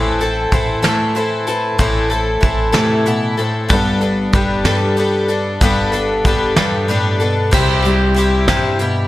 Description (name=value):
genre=indie folk with a building arrangement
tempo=63 BPM (dotted quarters)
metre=6/8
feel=straight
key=G major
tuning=A4 = 440 Hz
part: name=fingerpicked steel-string acoustic guitar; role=accompaniment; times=0.0-9.1 s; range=G2 to B4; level=-20 LUFS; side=equal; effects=none
part: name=picked twelve-string acoustic guitar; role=accompaniment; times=0.0-9.1 s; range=A2 to A4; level=-17 LUFS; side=left 2 dB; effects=none
part: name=upright bass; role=bass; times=0.0-9.1 s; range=G1 to A2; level=-21 LUFS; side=equal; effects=none
part: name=soft brush drum kit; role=drums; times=0.2-8.9 s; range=crash cymbal, hi-hat, kick drum, snare drum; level=-18 LUFS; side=right 1 dB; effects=none
room=light reverb, small room ambience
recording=none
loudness=-13 LUFS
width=side -16 dB against mid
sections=0.0-7.5 A section; 7.5-9.1 B section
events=none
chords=0.0 Am; 3.7 Gadd9; 7.5 C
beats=0.84 | 1.79 2.75 | 3.71 4.66 | 5.62 6.58 | 7.53 8.49